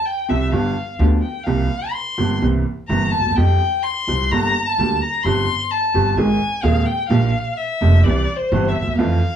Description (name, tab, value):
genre	tango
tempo	127 BPM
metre	4/4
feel	rubato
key	unclear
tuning	A4 = 439 Hz
part	dark violin	second line	0.0-9.4 s	C5 to C6	-21 LUFS	left 2 dB	none
part	clear upright piano	accompaniment	0.3-9.2 s	Eb1 to Ab4	-20 LUFS	right 2 dB	none
part	upright bass	bass	0.3-9.2 s	F1 to F2	-19 LUFS	right 1 dB	none
room	light reverb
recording	small room ambience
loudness	-16 LUFS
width	side -9 dB against mid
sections	0.0-9.4 A section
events	violin solo 0.0-9.4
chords	0.0 Fsus2; 0.5 G7; 1.5 C7sus4; 2.4 C7; 3.4 Fsus2; 4.3 Gm; 5.3 Csus4/G; 6.2 Ab; 7.1 Bb6; 8.0 C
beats	0.06 0.53 1.00 | 1.47 1.94 2.42 2.89 | 3.37 3.85 4.32 4.79 | 5.25 5.71 6.18 6.64 | 7.10 7.57 8.04 8.51 | 8.98